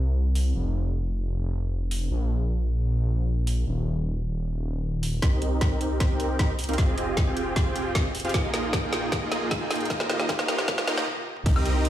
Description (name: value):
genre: future bass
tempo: 154 BPM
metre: 4/4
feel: half-time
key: Eb major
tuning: A4 = 440 Hz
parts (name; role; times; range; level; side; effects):
- wide detuned saw bass; bass; 0.0-11.9 s; Eb1 to C2; -26 LUFS; equal; chorus, sidechain pumping
- trap drum kit; drums; 0.4-11.9 s; crash cymbal, hi-hat, snare drum, toms, woodblock; -29 LUFS; equal; studio reverb
- supersaw chords; riff; 5.2-11.9 s; Bb3 to G5; -28 LUFS; right 1 dB; sidechain pumping, low-pass filter, dub echo
- electronic kick drum; drums; 5.2-11.5 s; none; -24 LUFS; equal; studio reverb
room: light reverb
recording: played on a big sound system in a bare room, stone room reverb, high-pass filter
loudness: -23 LUFS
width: side -12 dB against mid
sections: 0.0-5.2 A section; 5.2-11.5 B section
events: build-up 5.2-11.5; drum fill 5.2-11.1, 11.1-11.5; filter sweep on supersaw synth 5.2-11.5; filter sweep 5.2-11.5; stop 11.1-11.5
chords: 0.0 N.C.; 5.2 Cm7; 6.8 Fm9; 8.3 Bb7sus4; 9.9 Eb